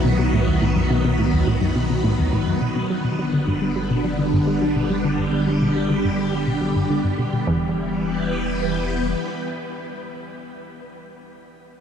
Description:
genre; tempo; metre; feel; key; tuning
ambient, sequencer-driven space music; 105 BPM; 4/4; straight; E minor; A4 = 442 Hz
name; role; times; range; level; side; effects
phased string machine; sustained chords; 0.0-10.5 s; D3 to B4; -22 LUFS; equal; ensemble chorus, phaser, shimmer reverb
concert harp; arpeggios; 0.0-0.8 s; B3 to E4; -40 LUFS; right 1 dB; none
analog pluck; riff; 0.0-7.7 s; D#2 to G3; -23 LUFS; equal; chorus, tape echo, shimmer reverb
round analog bass; bass; 0.0-9.1 s; E1 to B1; -29 LUFS; equal; none
room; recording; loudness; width
moderate huge ambient reverb, RT60 9.1 s; dark, warm production; -19 LUFS; side -8 dB against mid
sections
0.0-7.5 A section; 7.5-9.8 B section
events
fade-out on analog synth bass 0.0-7.5; filter sweep on synth arpeggio sound 0.0-7.5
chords
0.0 B; 2.9 G; 7.5 Em

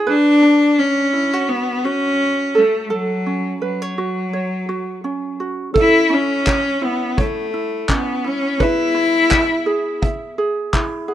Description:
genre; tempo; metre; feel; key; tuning
acoustic pop; 84 BPM; 4/4; swing 55% on 16ths; A major; A4 = 441 Hz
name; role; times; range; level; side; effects
ukulele; accompaniment; 0.0-11.1 s; C#4 to E5; -22 LUFS; right 3 dB; none
rich cello; melody; 0.1-10.0 s; F#3 to E4; -17 LUFS; left 1 dB; ping-pong delay
reed electric piano; accompaniment; 5.7-11.1 s; B3 to F#5; -32 LUFS; left 6 dB; tremolo
vintage brush drum kit; drums; 5.8-10.9 s; handclaps, kick drum; -19 LUFS; equal; none
room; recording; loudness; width
little or no reverb; rough home demo mix; -16 LUFS; side -11 dB against mid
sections
0.0-11.1 A section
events
none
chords
0.1 Bm; 2.6 F#m; 5.8 A; 8.6 E

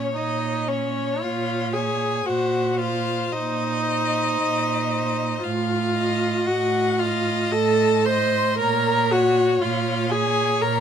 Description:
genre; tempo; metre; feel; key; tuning
classical, slow romantic movement for string quartet; 57 BPM; 3/4; rubato; Bb minor; A4 = 441 Hz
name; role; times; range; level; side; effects
rich violin; melody; 0.0-10.8 s; Db5 to C6; -27 LUFS; left 9 dB; none
rich violin; second line; 0.0-10.8 s; C5 to Eb5; -30 LUFS; left 4 dB; none
warm viola; accompaniment; 0.0-10.8 s; Db4 to C5; -22 LUFS; right 1 dB; none
rich cello; bass; 0.0-10.8 s; A2 to Bb2; -27 LUFS; right 6 dB; none
room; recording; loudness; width
light reverb; close, detailed microphones; -20 LUFS; side -8 dB against mid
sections
0.0-10.8 A section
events
none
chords
0.0 Bbm; 2.3 Ebm69/Bb; 5.4 F7/A; 8.6 Bbm

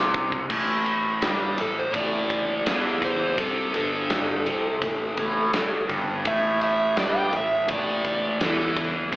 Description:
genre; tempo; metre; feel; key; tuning
blues rock power trio and southern rock; 84 BPM; 4/4; straight; A minor; A4 = 440 Hz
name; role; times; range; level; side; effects
crunchy overdriven guitar; riff; 0.0-9.2 s; G2 to G3; -27 LUFS; equal; phaser, slapback echo
fuzz fingered electric bass; bass; 0.0-9.2 s; G1 to G2; -30 LUFS; equal; overdrive
big rock drum kit; drums; 0.1-9.2 s; crash cymbal, kick drum, ride cymbal, snare drum; -27 LUFS; equal; none
overdriven slide guitar; melody; 1.6-8.8 s; A4 to G5; -26 LUFS; right 1 dB; slapback echo
room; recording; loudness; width
light reverb; live gig heard through the venue's PA, club reverb, AM radio sound; -22 LUFS; side -19 dB against mid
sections
0.5-9.2 A section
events
drum fill 0.0-0.5; electric slide guitar solo 0.5-9.2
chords
0.0 N.C.; 0.5 Am

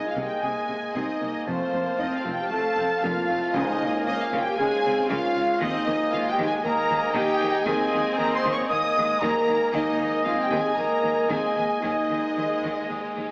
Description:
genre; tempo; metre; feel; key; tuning
cinematic; 116 BPM; 4/4; straight; unclear; A4 = 440 Hz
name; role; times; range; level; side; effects
warm symphonic violin section; melody; 0.0-13.3 s; C5 to Eb6; -35 LUFS; equal; none
mellow oboe; second line; 0.0-13.3 s; Ab5 to A5; -35 LUFS; equal; none
rich chamber violin section; second line; 0.0-13.3 s; C5 to Eb6; -37 LUFS; equal; none
warm clarinet; second line; 0.0-13.3 s; Eb5 to F5; -35 LUFS; equal; none
rich symphonic viola section; accompaniment; 0.0-13.3 s; Ab3 to Eb4; -35 LUFS; equal; none
mellow French horn section; sustained chords; 0.0-13.3 s; C4 to Eb5; -30 LUFS; equal; none
warm trombone section; sustained chords; 0.0-13.3 s; Ab2 to Db4; -38 LUFS; equal; none
warm trumpet section; stabs; 0.0-13.3 s; Eb5 to F5; -35 LUFS; equal; none
mellow hollow small flute group; second line; 0.1-13.3 s; C5 to Eb6; -34 LUFS; equal; none
rich studio double bass section; bass; 0.2-13.2 s; F1 to Eb2; -39 LUFS; equal; none
rich symphonic cello section; bass; 0.2-13.2 s; F2 to Eb3; -36 LUFS; equal; none
timpani; percussion; 3.5-4.3 s; Db3; -37 LUFS; equal; none
room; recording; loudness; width
wet scoring stage reverb, RT60 1.5 s; AM radio sound; -25 LUFS; mono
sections
0.0-13.3 A section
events
none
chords
0.0 Abadd9/C; 1.5 F; 3.5 Db; 5.6 Ebsus4

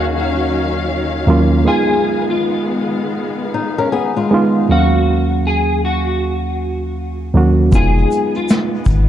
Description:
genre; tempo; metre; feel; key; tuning
lo-fi hip hop; 79 BPM; 4/4; swing 63% on 16ths; Eb minor; A4 = 438 Hz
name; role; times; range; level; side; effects
clean electric guitar; melody; 0.0-8.7 s; F4 to Ab4; -20 LUFS; left 2 dB; ensemble chorus, tape echo
overdriven reed electric piano; accompaniment; 0.0-9.1 s; Eb2 to F5; -16 LUFS; right 2 dB; cassette tape
warm studio string section; sustained chords; 0.0-9.1 s; Eb3 to F5; -22 LUFS; left 3 dB; none
flamenco guitar; second line; 3.5-4.7 s; Ab3 to Bb4; -19 LUFS; left 4 dB; tape echo
warm sub bass; bass; 7.7-9.1 s; F1 to Ab1; -14 LUFS; left 1 dB; none
vintage brush drum kit; drums; 7.7-9.1 s; hi-hat, kick drum, snare drum; -16 LUFS; left 1 dB; none
tube shaker; percussion; 7.7-9.1 s; none; -36 LUFS; left 8 dB; none
room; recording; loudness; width
moderate plate reverb, RT60 2.1 s; dreamy mix soaked in reverb, cassette tape; -13 LUFS; side -11 dB against mid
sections
0.0-9.1 A section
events
none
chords
0.0 Ebm9; 1.6 Fm7b5; 4.7 Ebm9; 7.7 Fm7b5

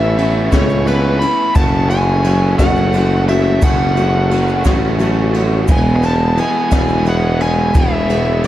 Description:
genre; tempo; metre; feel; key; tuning
folk rock and heartland rock; 58 BPM (dotted quarters); 6/8; straight; unclear; A4 = 440 Hz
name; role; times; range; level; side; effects
smooth overdriven lead guitar; melody; 0.0-8.5 s; B4 to B5; -19 LUFS; equal; analog delay
picked steel-string acoustic guitar; accompaniment; 0.0-8.5 s; E2 to F#4; -21 LUFS; left 2 dB; none
mellow tonewheel organ; sustained chords; 0.0-8.5 s; G#3 to C#6; -28 LUFS; right 1 dB; none
overdriven electric guitar; riff; 0.0-8.5 s; E2 to G#4; -21 LUFS; right 1 dB; none
warm tuba; bass; 0.0-8.5 s; E1 to C#2; -16 LUFS; equal; none
jazz brush drum kit; drums; 0.2-8.5 s; crash cymbal, kick drum, ride cymbal, snare drum; -18 LUFS; equal; none
egg shaker; percussion; 0.5-8.2 s; none; -40 LUFS; right 12 dB; none
room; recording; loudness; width
light reverb, small room ambience; none; -12 LUFS; side -13 dB against mid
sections
0.0-8.5 A section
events
none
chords
0.0 Aadd9; 1.6 F#m; 5.7 E

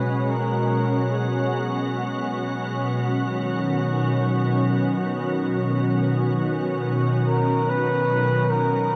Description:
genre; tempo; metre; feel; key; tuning
ambient; free time; none; none; B major; A4 = 437 Hz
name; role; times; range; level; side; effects
mellow flugelhorn; melody; 0.0-1.9, 7.3-9.0 s; G#4 to B4; -28 LUFS; equal; diffuse ambient delay
soft additive organ-like pad; sustained chords; 0.0-9.0 s; B2 to F#4; -24 LUFS; equal; ensemble chorus, built-in reverb
room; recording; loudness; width
wet huge ambient reverb, RT60 8.0 s; none; -23 LUFS; mono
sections
0.0-9.0 A section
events
fade-in on flugelhorn 0.0-9.0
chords
0.0 G#m7/B; 2.8 B

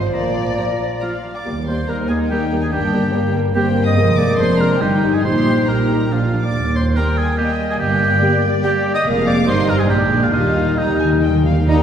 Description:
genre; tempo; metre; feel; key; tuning
quick classical-period movement for symphony orchestra; 133-146 BPM; 3/4; rubato; Eb major; A4 = 441 Hz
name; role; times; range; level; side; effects
clear clarinet; second line; 0.0-1.2, 11.7-11.8 s; Bb4 to D5; -34 LUFS; equal; none
clear oboe; second line; 0.0-11.8 s; Eb4 to C6; -21 LUFS; right 2 dB; none
warm chamber violin section; second line; 0.0-11.8 s; Bb3 to Bb5; -26 LUFS; left 3 dB; none
warm bassoon; accompaniment; 0.0-1.2, 11.7-11.8 s; F3 to G3; -26 LUFS; right 3 dB; none
dark chamber double bass section; bass; 0.0-11.8 s; F1 to Eb2; -22 LUFS; right 1 dB; none
warm studio cello section; bass; 0.0-11.8 s; Eb2 to Eb4; -22 LUFS; right 1 dB; none
mellow French horn section; sustained chords; 0.1-11.8 s; F3 to Eb4; -22 LUFS; left 2 dB; none
warm chamber violin section; melody; 0.6-11.8 s; Eb5 to Eb6; -30 LUFS; left 3 dB; none
warm chamber viola section; accompaniment; 0.6-11.8 s; F3 to F4; -23 LUFS; right 1 dB; none
timpani; percussion; 10.3-11.8 s; Eb3; -22 LUFS; equal; none
large flute ensemble; second line; 11.7-11.8 s; Bb5; -24 LUFS; left 5 dB; none
room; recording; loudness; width
wet concert hall reverb, RT60 2.0 s; heard from further back in the room; -14 LUFS; side -8 dB against mid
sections
0.0-1.5 A section; 1.5-11.7 B section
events
timpani fill 10.3-11.7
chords
0.1 Bb; 1.5 Eb; 2.7 Gm; 4.0 Bb7/F; 4.8 Eb/G; 5.2 Eb/Bb; 6.1 Bb; 6.5 Eb; 7.8 Gm; 9.0 Bb7/F; 9.5 Eb/G; 9.9 Bb7; 10.3 Eb

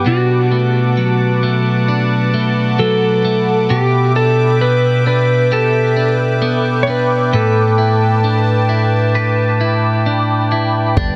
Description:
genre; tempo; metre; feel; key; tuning
dream pop; 66 BPM; 4/4; straight; unclear; A4 = 440 Hz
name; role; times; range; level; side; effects
clean lap steel guitar; melody; 0.0-10.0 s; F#4 to C#5; -20 LUFS; equal; delay
phased analog pad; sustained chords; 0.0-11.2 s; B4 to D6; -22 LUFS; equal; phaser, chorus
clean electric guitar; arpeggios; 0.0-11.2 s; A2 to B4; -17 LUFS; equal; subtle chorus, delay
chorused synth bass; bass; 11.0-11.2 s; G1; -21 LUFS; equal; none
booming analog drum machine; drums; 11.0-11.2 s; kick drum, toms; -19 LUFS; equal; none
room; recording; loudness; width
light reverb; dense, heavily limited modern master; -14 LUFS; mono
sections
0.0-11.2 A section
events
none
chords
0.1 Bm7; 3.7 Em7/B; 7.3 A9sus4

